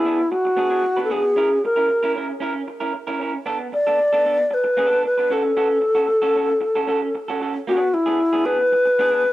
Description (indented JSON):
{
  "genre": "disco",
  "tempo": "114 BPM",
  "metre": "4/4",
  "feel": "straight",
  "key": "unclear",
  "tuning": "A4 = 439 Hz",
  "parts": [
    { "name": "wooden-headed alto flute", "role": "melody", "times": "0.0-9.3 s", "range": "E4 to D5", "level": "-18 LUFS", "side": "left 1 dB", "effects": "cassette tape, analog delay" },
    { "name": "electric guitar through a small old amp", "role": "accompaniment", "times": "0.0-9.3 s", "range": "B3 to B4", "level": "-26 LUFS", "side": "right 4 dB", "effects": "cassette tape" }
  ],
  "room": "light reverb, studio ambience",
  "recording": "home recording on cassette",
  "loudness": "-17 LUFS",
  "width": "side -15 dB against mid",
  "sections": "0.0-9.3 A section",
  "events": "none",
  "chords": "0.0 E7/B; 1.4 C#m6; 3.5 Bm7; 5.3 A6; 7.7 E7/B",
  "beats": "0.30 0.83 | 1.35 1.88 2.40 2.93 | 3.46 3.98 4.51 5.03 | 5.56 6.08 6.61 7.13 | 7.66 8.18 8.71 9.23"
}